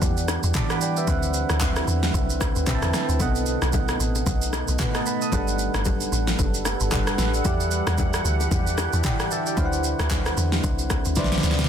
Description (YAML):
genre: amapiano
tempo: 113 BPM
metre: 4/4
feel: swing 58% on 16ths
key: unclear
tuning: A4 = 440 Hz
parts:
  - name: soft electric-piano-like synth keys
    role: accompaniment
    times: 0.0-11.7 s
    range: B2 to D#6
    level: -28 LUFS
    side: right 1 dB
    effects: chorus
  - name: deep dark ambient pad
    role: sustained chords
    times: 0.0-11.7 s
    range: D3 to F#5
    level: -30 LUFS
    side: right 2 dB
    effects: chorus, built-in reverb, sidechain pumping
  - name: deep log drum bass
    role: bass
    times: 0.0-11.7 s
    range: F#1 to E2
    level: -25 LUFS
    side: equal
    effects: none
  - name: deep house drum kit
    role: drums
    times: 0.0-11.7 s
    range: handclaps, kick drum, rim click, shaker, snare drum, toms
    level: -25 LUFS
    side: equal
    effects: soft clipping on snare
  - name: congas and bongos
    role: percussion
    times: 0.0-11.3 s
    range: none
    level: -34 LUFS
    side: left 7 dB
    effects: none
room: digital ambience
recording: dense, heavily limited modern master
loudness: -21 LUFS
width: side -8 dB against mid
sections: 0.0-11.7 A section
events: drum fill 11.2-11.7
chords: 0.0 Em9; 1.1 D13; 3.2 B7; 5.3 Gmaj9; 7.5 Em9; 9.6 D13